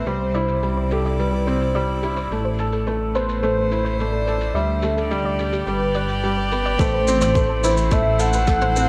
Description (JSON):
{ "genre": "piano and strings electronica", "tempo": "107 BPM", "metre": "4/4", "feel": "straight", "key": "A minor", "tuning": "A4 = 438 Hz", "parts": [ { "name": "warm velvety synth lead", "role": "melody", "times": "0.0-8.9 s", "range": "A4 to F#5", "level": "-26 LUFS", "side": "equal", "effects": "chorus, tape echo" }, { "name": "warm string quartet", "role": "sustained chords", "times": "0.0-8.9 s", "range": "A2 to D5", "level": "-30 LUFS", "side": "equal", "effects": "sidechain pumping" }, { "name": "soft round pluck", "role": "arpeggios", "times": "0.0-8.7 s", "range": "G4 to D5", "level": "-34 LUFS", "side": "equal", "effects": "none" }, { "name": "felt-muted upright piano", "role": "riff", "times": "0.0-8.9 s", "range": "G3 to B4", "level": "-27 LUFS", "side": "equal", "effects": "tape echo" }, { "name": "dark detuned saw bass", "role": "bass", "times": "0.0-8.9 s", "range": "G1 to D2", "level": "-27 LUFS", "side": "equal", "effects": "tube saturation, sidechain pumping" }, { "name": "vintage brush drum kit", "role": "drums", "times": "0.1-8.9 s", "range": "rim click, shaker, toms", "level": "-34 LUFS", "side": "equal", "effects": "low-pass filter on toms, low-pass filter on snare, low-pass filter on perc, low-pass filter on room" }, { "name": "electronic kick drum", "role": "drums", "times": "6.8-8.6 s", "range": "none", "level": "-22 LUFS", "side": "equal", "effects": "none" } ], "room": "light reverb, small room ambience", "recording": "none", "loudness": "-21 LUFS", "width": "mono", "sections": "0.0-6.8 A section; 6.8-8.9 B section", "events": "drop 6.8-8.9", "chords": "0.1 Cadd9; 2.3 Amadd9; 4.6 Dsus4; 5.7 G; 6.8 Amadd9" }